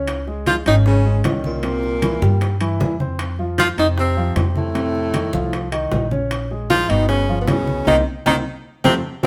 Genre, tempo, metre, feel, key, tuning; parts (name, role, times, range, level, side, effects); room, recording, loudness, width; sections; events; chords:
Afro-Cuban jazz; 154 BPM; 4/4; straight; A4 = 440 Hz
warm grand piano; accompaniment; 0.0-9.3 s; Cb3 to Db5; -26 LUFS; equal
upright bass; bass; 0.0-9.3 s; G1 to G2; -24 LUFS; equal
bongos; percussion; 0.1-9.3 s; -31 LUFS; equal
congas; percussion; 0.1-9.3 s; -29 LUFS; equal
timbales; percussion; 0.1-9.3 s; -31 LUFS; equal
breathy tenor saxophone; melody; 0.5-8.9 s; A3 to F4; -23 LUFS; equal
clear baritone saxophone; second line; 0.5-8.9 s; A2 to F3; -27 LUFS; equal
moderate stone room reverb, RT60 1.0 s; band playing live in one room; -19 LUFS; mono
0.0-9.3 A section
drum fill 7.9-9.3; band accent 7.9-9.3
0.1 Dbsus2; 1.6 C7; 3.2 F5; 4.8 F7; 6.3 Bbm7; 7.1 G7; 7.9 Cm7; 8.7 F